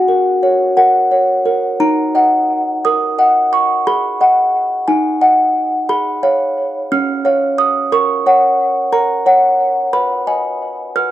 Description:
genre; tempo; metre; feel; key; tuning
classical, lullaby for music box; 59 BPM (dotted quarters); 6/8; straight; F# major; A4 = 440 Hz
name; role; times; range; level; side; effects
music box; solo; 0.0-11.1 s; C#4 to E#6; -12 LUFS; equal; tape echo
room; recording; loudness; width
little or no reverb; dry, close 1970s-style studio recording; -12 LUFS; side -13 dB against mid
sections
0.0-1.8 A section; 1.8-11.1 B section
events
none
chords
0.0 F#; 1.8 D#m; 3.9 G#m7; 5.9 C#7/G#; 7.9 F#/A#; 9.9 G#m/B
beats
0.78 | 1.82 2.85 | 3.87 4.88 | 5.89 6.91 | 7.92 8.92 | 9.93 10.96

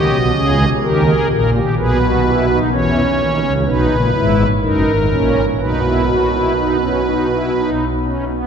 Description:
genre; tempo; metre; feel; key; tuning
classical, baroque-style 3-part fugue for pipe organ; 63 BPM; 3/4; straight; B major; A4 = 438 Hz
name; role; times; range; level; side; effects
pipe organ, strings celeste; solo; 0.0-8.5 s; F#1 to D#5; -13 LUFS; equal; none
room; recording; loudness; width
wet cathedral reverb, RT60 4.7 s; heard from further back in the room; -13 LUFS; side -7 dB against mid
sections
0.0-2.7 A section; 2.7-8.5 B section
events
none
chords
0.0 D#; 1.8 G#m/B; 2.7 C#m7; 4.6 F#; 5.6 B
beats
0.82 1.77 | 2.72 3.66 4.62 | 5.59 6.56 7.54

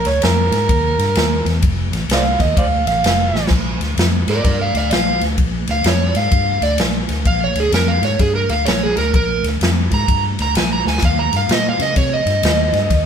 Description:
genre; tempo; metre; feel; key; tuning
electric blues shuffle; 128 BPM; 4/4; swing 64% on 8ths; Bb mixolydian; A4 = 441 Hz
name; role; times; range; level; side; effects
overdriven harmonica; melody; 0.0-3.5 s; Bb4 to F5; -18 LUFS; right 3 dB; none
swinging big-band drum kit; drums; 0.0-13.0 s; crash cymbal, kick drum, ride cymbal, snare drum; -18 LUFS; equal; none
vintage muted fingered electric bass; bass; 0.1-13.1 s; F1 to Db3; -19 LUFS; left 1 dB; none
overdriven slide guitar; second line; 4.3-13.0 s; Ab4 to Bb5; -18 LUFS; right 2 dB; none
room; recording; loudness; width
light reverb; band playing live in one room, faint mains hum; -14 LUFS; side -8 dB against mid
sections
0.0-3.5 A section; 3.5-13.1 A section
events
harmonica solo 0.0-3.5; drum fill 3.3, 10.8; electric slide guitar solo 3.5-13.1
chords
0.0 Bb7; 0.7 Eb; 1.6 F; 3.5 Bb; 11.0 Eb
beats
0.23 0.70 1.17 | 1.63 2.10 2.57 3.04 | 3.50 3.97 4.44 4.91 | 5.38 5.85 6.32 6.79 | 7.26 7.73 8.20 8.67 | 9.14 9.61 10.08 10.55 | 11.03 11.50 11.97 12.44 | 12.91

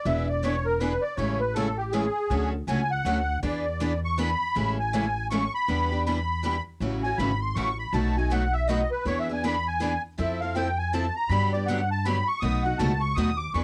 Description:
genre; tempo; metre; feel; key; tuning
acoustic string swing (jazz manouche); 160 BPM; 3/4; swing 61% on 8ths; A major; A4 = 440 Hz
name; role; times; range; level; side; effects
musette accordion; second line; 0.0-13.6 s; G4 to D#6; -30 LUFS; equal; cassette tape
picked steel-string acoustic guitar; accompaniment; 0.1-13.6 s; B2 to A4; -34 LUFS; equal; cassette tape
picked steel-string acoustic guitar; accompaniment; 0.1-13.6 s; B2 to B4; -34 LUFS; equal; cassette tape
upright bass; bass; 0.1-13.6 s; E1 to G2; -31 LUFS; equal; none
room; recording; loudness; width
light reverb; home recording on cassette; -26 LUFS; mono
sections
0.0-5.7 A section; 5.7-13.6 A section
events
accordion solo 0.0-13.6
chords
0.1 E7; 1.2 Amaj7; 2.3 Dmaj7; 3.4 E7; 4.6 Amaj7; 5.7 Em7; 6.8 A6; 7.9 B7; 9.1 E7; 10.2 Fmaj7; 11.3 Gmaj7; 12.4 B7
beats
| 0.06 0.44 0.81 | 1.19 1.56 1.94 | 2.31 2.68 3.06 | 3.43 3.81 4.18 | 4.56 4.93 5.31 | 5.68 6.06 6.44 | 6.81 7.19 7.56 | 7.94 8.31 8.69 | 9.06 9.44 9.81 | 10.19 10.56 10.94 | 11.31 11.68 12.06 | 12.43 12.80 13.18 | 13.55

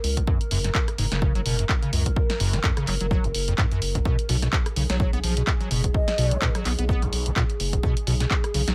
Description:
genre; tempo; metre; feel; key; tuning
acid house; 127 BPM; 4/4; swing 56% on 16ths; F# major; A4 = 440 Hz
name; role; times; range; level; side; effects
dark analog pad; sustained chords; 0.0-8.7 s; G#4 to A#4; -37 LUFS; equal; chorus, phaser, sidechain pumping
round analog bass; bass; 0.0-8.7 s; F#1 to C#2; -29 LUFS; equal; sidechain pumping
punchy analog drum machine; drums; 0.0-8.7 s; handclaps, hi-hat, rim click, snare drum; -30 LUFS; equal; none
electronic kick drum; drums; 0.2-8.4 s; none; -26 LUFS; equal; none
acid bass, square; riff; 0.3-8.7 s; F#1 to B3; -30 LUFS; equal; overdrive, ensemble chorus
mellow hollow concert flute; melody; 4.9-6.6 s; C#5 to D#5; -34 LUFS; equal; dub echo
room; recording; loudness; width
little or no reverb; none; -24 LUFS; mono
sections
0.0-8.7 A section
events
none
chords
0.0 F#add9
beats
| 0.28 0.75 1.22 1.69 | 2.17 2.64 3.11 3.58 | 4.05 4.53 5.00 5.47 | 5.94 6.42 6.89 7.36 | 7.83 8.31

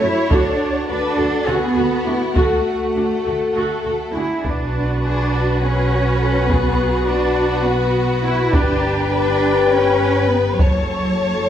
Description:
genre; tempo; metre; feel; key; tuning
cinematic, epic orchestral film score; 204 BPM (eighths); 7/8; straight; unclear; A4 = 440 Hz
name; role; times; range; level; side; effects
warm symphonic violin section; melody; 0.0-11.5 s; C#5 to A5; -32 LUFS; left 4 dB; none
warm symphonic violin section; second line; 0.0-11.5 s; E4 to C#5; -25 LUFS; left 2 dB; none
warm symphonic viola section; accompaniment; 0.0-11.5 s; C#4 to C#5; -24 LUFS; right 1 dB; none
warm French horn section; sustained chords; 0.0-11.5 s; A3 to C#5; -22 LUFS; left 6 dB; none
rich symphonic double bass section; bass; 0.0-11.5 s; F#1 to F#2; -23 LUFS; right 1 dB; none
warm symphonic cello section; bass; 0.0-11.5 s; F#3 to E4; -21 LUFS; right 2 dB; none
taiko ensemble; drums; 0.3-11.2 s; none; -20 LUFS; equal; none
room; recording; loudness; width
wet recital hall reverb, RT60 1.4 s; recorded in a church or concert hall; -15 LUFS; side -10 dB against mid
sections
0.0-11.5 A section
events
none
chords
0.3 D; 4.4 Bm; 8.5 G; 10.6 F#m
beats
0.01 | 0.31 0.60 0.89 1.18 1.48 1.77 2.06 | 2.36 2.66 2.95 3.25 3.55 3.84 4.14 | 4.44 4.74 5.03 5.33 5.62 5.91 6.20 | 6.49 6.78 7.08 7.37 7.66 7.95 8.24 | 8.53 8.82 9.11 9.40 9.70 10.00 10.29 | 10.59 10.89 11.19

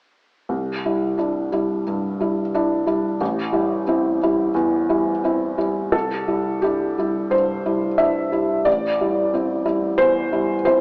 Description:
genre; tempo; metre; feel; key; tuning
neoclassical minimalist piano; 89 BPM; 4/4; rubato; C major; A4 = 440 Hz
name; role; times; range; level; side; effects
felt-muted upright piano; solo; 0.5-10.8 s; A1 to E5; -21 LUFS; equal; none
room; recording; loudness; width
moderate recital hall reverb, RT60 1.5 s; AM radio sound; -21 LUFS; mono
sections
0.5-5.9 A section; 5.9-10.8 B section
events
none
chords
0.5 Cadd9; 3.2 Am7; 5.9 Cadd9; 8.7 Am7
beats
| 0.49 1.18 1.86 2.53 | 3.20 3.87 4.54 5.23 | 5.93 6.62 7.32 7.99 | 8.67 9.34 10.01 10.67

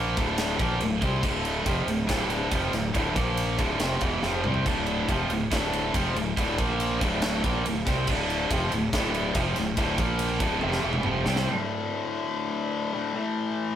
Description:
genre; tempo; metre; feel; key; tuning
hard rock; 141 BPM; 4/4; straight; D minor; A4 = 439 Hz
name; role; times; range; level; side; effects
heavy high-gain guitar; riff; 0.0-11.5 s; D2 to C4; -29 LUFS; right 5 dB; distortion
tight distorted guitar; riff; 0.0-13.8 s; D2 to C4; -29 LUFS; left 4 dB; distortion
fuzz fingered electric bass; bass; 0.0-11.5 s; D1 to C2; -30 LUFS; equal; overdrive
tight metal drum kit; drums; 0.2-11.5 s; crash cymbal, kick drum, ride cymbal, snare drum, toms; -30 LUFS; equal; none
room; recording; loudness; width
moderate studio reverb, RT60 0.5 s; rough rehearsal-room recording; -24 LUFS; side -10 dB against mid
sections
0.0-11.5 A section; 11.5-13.8 B section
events
drum fill 4.2-4.7, 10.6-11.5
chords
0.2 Dm; 3.2 Bb5; 3.6 Dm; 6.6 Bb5; 7.0 Dm; 10.0 Bb5; 10.4 Dm; 11.5 D5; 13.2 A5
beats
0.39 0.82 | 1.24 1.67 2.10 2.53 | 2.95 3.38 3.81 4.24 | 4.66 5.09 5.52 5.95 | 6.37 6.80 7.22 7.65 | 8.07 8.50 8.92 9.35 | 9.77 10.20 10.62 11.04 | 11.47 11.89 12.31 12.73 | 13.15 13.58

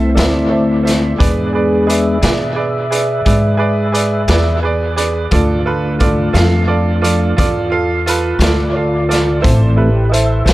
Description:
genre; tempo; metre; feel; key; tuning
slow blues; 58 BPM (dotted quarters); 12/8; straight; unclear; A4 = 440 Hz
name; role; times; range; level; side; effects
bright upright piano; accompaniment; 0.0-10.5 s; E4 to F5; -18 LUFS; right 4 dB; dub echo
mellow tonewheel organ; sustained chords; 0.0-10.5 s; E3 to E5; -18 LUFS; left 1 dB; slow rotary speaker, chorus vibrato
upright bass; bass; 0.0-10.5 s; A1 to B2; -16 LUFS; equal; none
raw garage drum kit; drums; 0.2-10.5 s; hi-hat, kick drum, snare drum; -19 LUFS; equal; dub echo
room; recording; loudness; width
light reverb, small room reverb; echo-heavy mix; -12 LUFS; side -17 dB against mid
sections
0.0-10.5 A section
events
tonewheel organ solo 0.0-10.5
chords
0.0 Am; 1.2 E7; 5.3 Dm; 9.4 Am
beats
0.17 | 1.20 2.23 3.26 4.29 | 5.32 6.35 7.38 8.41 | 9.44 10.47

